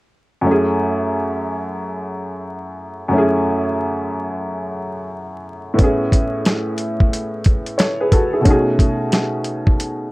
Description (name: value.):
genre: hip hop, boom-bap hip-hop.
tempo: 90 BPM.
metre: 4/4.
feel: swing 63% on 16ths.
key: F# dorian.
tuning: A4 = 440 Hz.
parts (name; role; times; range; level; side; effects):
warm upright piano; accompaniment; 0.4-10.1 s; F#2 to C#5; -19 LUFS; equal; cassette tape, high-pass filter, low-pass filter.
dusty soul sampler-style drum kit; drums; 5.8-10.0 s; hi-hat, kick drum, snare drum; -15 LUFS; equal; vintage 12-bit sampler grit.
room: light reverb.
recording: vinyl crackle.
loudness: -16 LUFS.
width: side -20 dB against mid.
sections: 0.5-10.1 A section.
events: break 9.8-10.1.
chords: 0.5 F#m9; 5.8 Amaj9; 8.5 B13.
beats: | 0.46 1.12 1.79 2.46 | 3.12 3.79 4.46 5.12 | 5.79 6.46 7.12 7.79 | 8.46 9.12 9.79.